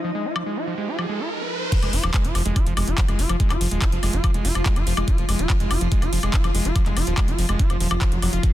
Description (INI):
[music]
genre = psychedelic trance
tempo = 143 BPM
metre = 4/4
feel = straight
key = unclear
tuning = A4 = 438 Hz
[part]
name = evolving wavetable pad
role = sustained chords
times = 0.0-8.5 s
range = F3 to Ab4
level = -30 LUFS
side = equal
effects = chorus, built-in reverb, sidechain pumping
[part]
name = overdriven acid bass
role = riff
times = 0.0-8.5 s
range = F3 to F4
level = -29 LUFS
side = moving between left 5 dB and right 4 dB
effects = distortion, auto-pan, sidechain pumping, tape echo
[part]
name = riser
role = sound effects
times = 0.1-1.7 s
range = none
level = -30 LUFS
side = right 2 dB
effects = none
[part]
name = airy breathy pad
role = texture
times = 0.0-1.3 s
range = F4 to Eb5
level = -35 LUFS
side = left 2 dB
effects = chorus, phaser, sidechain pumping
[part]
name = garage drum kit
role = drums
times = 0.4-8.5 s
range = crash cymbal, handclaps, hi-hat, woodblock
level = -28 LUFS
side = left 2 dB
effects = none
[part]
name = electronic kick drum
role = drums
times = 1.7-8.5 s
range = none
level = -20 LUFS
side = equal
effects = none
[part]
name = round analog bass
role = bass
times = 1.8-8.4 s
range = Eb1 to Gb1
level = -23 LUFS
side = equal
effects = none
[sound]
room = digital ambience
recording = dense, heavily limited modern master, low-pass filter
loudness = -19 LUFS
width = side -14 dB against mid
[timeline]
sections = 0.0-1.7 A section; 1.7-8.5 B section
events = filter sweep 0.0-1.7; riser 0.1-1.7; drop 1.7-8.5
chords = 0.0 F5; 1.7 Ebsus4 (rootless)